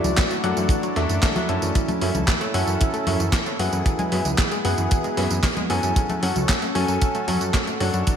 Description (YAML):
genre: italo disco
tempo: 114 BPM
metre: 4/4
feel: straight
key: F# minor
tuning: A4 = 439 Hz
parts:
  - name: warm analog pad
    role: sustained chords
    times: 0.0-8.2 s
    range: A3 to D5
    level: -28 LUFS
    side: right 1 dB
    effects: chorus
  - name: analog pluck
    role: arpeggios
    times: 0.0-8.2 s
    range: E3 to C#4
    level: -30 LUFS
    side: right 2 dB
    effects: chorus, vintage 12-bit sampler grit, digital delay
  - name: bright grand piano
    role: stabs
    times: 0.0-8.2 s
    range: F#3 to A5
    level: -27 LUFS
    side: left 2 dB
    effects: digital delay
  - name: fat analog bass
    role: bass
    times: 0.0-8.0 s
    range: C#2 to F#2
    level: -26 LUFS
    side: equal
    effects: none
  - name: gated 80s digital drum machine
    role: drums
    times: 0.0-8.2 s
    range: congas, handclaps, hi-hat, snare drum, tambourine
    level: -26 LUFS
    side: equal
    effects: gated reverb, gated reverb snare
  - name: kick drum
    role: drums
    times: 0.2-8.2 s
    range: none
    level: -22 LUFS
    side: equal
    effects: none
room: moderate lush hall reverb, RT60 1.8 s, small room ambience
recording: bright 1980s-style digital production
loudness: -19 LUFS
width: side -8 dB against mid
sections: 0.0-8.2 A section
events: none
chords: 0.0 Dadd9; 1.8 A; 6.0 F#m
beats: 0.17 0.70 1.23 | 1.75 2.28 2.81 3.33 | 3.86 4.38 4.91 5.44 | 5.96 6.49 7.02 7.54 | 8.07